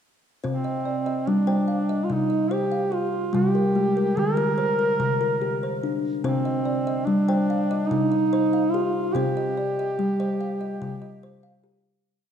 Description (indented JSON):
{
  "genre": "world meditative, meditative tuned percussion",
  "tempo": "144 BPM (eighths)",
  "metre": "7/8",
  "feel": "straight",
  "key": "C minor",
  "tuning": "A4 = 444 Hz",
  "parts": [
    { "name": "kalimba", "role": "arpeggios", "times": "0.4-12.1 s", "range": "C3 to G5", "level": "-24 LUFS", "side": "left 2 dB", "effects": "none" },
    { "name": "mellow duduk", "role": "melody", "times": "0.5-11.6 s", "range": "C4 to Bb4", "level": "-24 LUFS", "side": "right 2 dB", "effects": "tape echo" }
  ],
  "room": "wet echo chamber reverb, RT60 2.2 s",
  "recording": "dark, warm production",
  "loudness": "-21 LUFS",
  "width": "side -8 dB against mid",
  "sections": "0.4-12.1 A section",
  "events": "fade-out 9.2-12.1",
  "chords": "0.4 Cm; 3.3 Gm/C; 6.3 Cm"
}